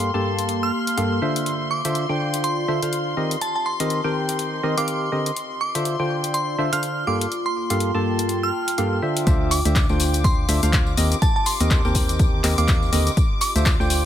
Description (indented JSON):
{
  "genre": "piano house",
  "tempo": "123 BPM",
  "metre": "4/4",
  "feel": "swing 58% on 16ths",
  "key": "D phrygian",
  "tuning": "A4 = 440 Hz",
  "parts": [
    { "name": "warm studio violin section", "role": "sustained chords", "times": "0.0-14.1 s", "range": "C6 to D6", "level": "-31 LUFS", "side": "left 2 dB", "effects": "sidechain pumping, low-pass filter" },
    { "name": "percussive organ stab", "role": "riff", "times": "0.0-14.1 s", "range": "G2 to A5", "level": "-24 LUFS", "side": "equal", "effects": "chorus, sidechain pumping" },
    { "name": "punchy analog drum machine", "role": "drums", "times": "0.0-14.0 s", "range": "handclaps, hi-hat, shaker", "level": "-26 LUFS", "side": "left 3 dB", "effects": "none" },
    { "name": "warbly tape-like pad", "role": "texture", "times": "0.0-14.1 s", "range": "Bb3 to E6", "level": "-30 LUFS", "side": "right 1 dB", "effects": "chorus, built-in reverb, sidechain pumping" },
    { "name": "glassy synth bell", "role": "melody", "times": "0.6-13.6 s", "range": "A5 to F6", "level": "-28 LUFS", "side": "right 2 dB", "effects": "chorus, ping-pong delay" },
    { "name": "organ-like FM bass", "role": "bass", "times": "9.3-14.1 s", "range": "D2 to Eb2", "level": "-22 LUFS", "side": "equal", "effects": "sidechain pumping" },
    { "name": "electronic kick drum", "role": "drums", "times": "9.3-13.8 s", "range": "none", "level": "-20 LUFS", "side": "equal", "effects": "none" },
    { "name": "tambourine", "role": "percussion", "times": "9.3-14.0 s", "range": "none", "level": "-34 LUFS", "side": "left 10 dB", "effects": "none" }
  ],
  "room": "light reverb, digital ambience",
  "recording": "none",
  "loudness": "-19 LUFS",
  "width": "side -10 dB against mid",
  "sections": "0.0-9.3 A section; 9.3-14.1 B section",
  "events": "drop 9.3-14.1",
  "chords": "0.0 Gm9; 1.5 Dm9; 3.2 Eb6; 5.4 Dm9; 7.1 Gm9; 9.3 Dm9; 11.0 Eb6; 13.2 Dm9"
}